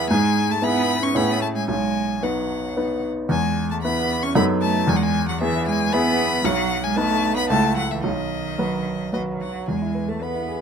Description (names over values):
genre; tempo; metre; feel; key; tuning
quick classical-period movement for piano trio; 113 BPM; 3/4; straight; E major; A4 = 439 Hz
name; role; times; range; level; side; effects
clear violin; melody; 0.0-10.6 s; D#5 to C#6; -26 LUFS; left 6 dB; none
rich cello; second line; 0.0-10.6 s; D#3 to C#4; -25 LUFS; right 6 dB; none
warm baby grand piano; accompaniment; 0.0-10.6 s; B1 to E5; -22 LUFS; equal; none
room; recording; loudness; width
light reverb; close, detailed microphones; -19 LUFS; side -7 dB against mid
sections
0.0-9.7 A section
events
none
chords
0.1 E/G#; 1.1 Amaj7; 1.7 B; 3.3 E5; 4.4 B7/F#; 4.9 E; 6.5 B; 7.5 A/C#; 8.0 B; 9.7 E